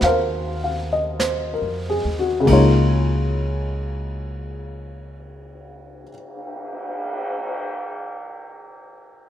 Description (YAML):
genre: jazz ballad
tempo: 45-52 BPM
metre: 4/4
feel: swing 67% on 8ths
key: Db major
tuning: A4 = 438 Hz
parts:
  - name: warm upright piano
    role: accompaniment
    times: 0.0-9.3 s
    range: Db3 to Gb5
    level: -20 LUFS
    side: left 2 dB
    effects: none
  - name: upright bass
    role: bass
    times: 0.0-6.0 s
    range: Db2 to F2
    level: -23 LUFS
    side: equal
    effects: none
  - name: vintage brush drum kit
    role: drums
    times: 0.0-7.5 s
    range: brushed snare drum, cymbal swell, hi-hat, kick drum, ride cymbal, snare drum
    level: -30 LUFS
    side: right 1 dB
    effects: none
room: light reverb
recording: minimal, uncompressed stereo recording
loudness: -19 LUFS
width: side -11 dB against mid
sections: 0.0-2.5 A section; 2.5-7.7 B section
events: slowing down 0.0-2.5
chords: 0.0 Ab13; 2.5 Db69